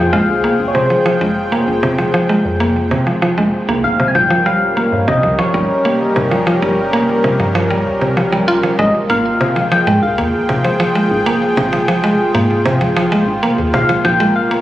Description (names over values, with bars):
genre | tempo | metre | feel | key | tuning
IDM | 97 BPM | 4/4 | straight | F minor | A4 = 440 Hz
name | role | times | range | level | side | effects
soft struck synth lead | melody | 0.0-14.6 s | C5 to Ab5 | -19 LUFS | left 2 dB | chorus, phaser, digital delay
warm analog pad | sustained chords | 0.0-14.6 s | G3 to G5 | -18 LUFS | equal | chorus
mallet-like synth pluck | arpeggios | 0.0-14.6 s | C3 to F4 | -15 LUFS | right 1 dB | chorus, cassette tape, tape echo
woody FM bass | bass | 0.0-14.6 s | F1 to Ab2 | -24 LUFS | equal | none
room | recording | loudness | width
moderate huge ambient reverb, RT60 7.6 s | recorded on a phone in the room, club reverb, compression | -12 LUFS | side -14 dB against mid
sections
0.0-14.6 A section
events
none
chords
0.0 Fm; 3.8 Gm7b5; 8.8 Fm/Ab; 13.7 Bbm9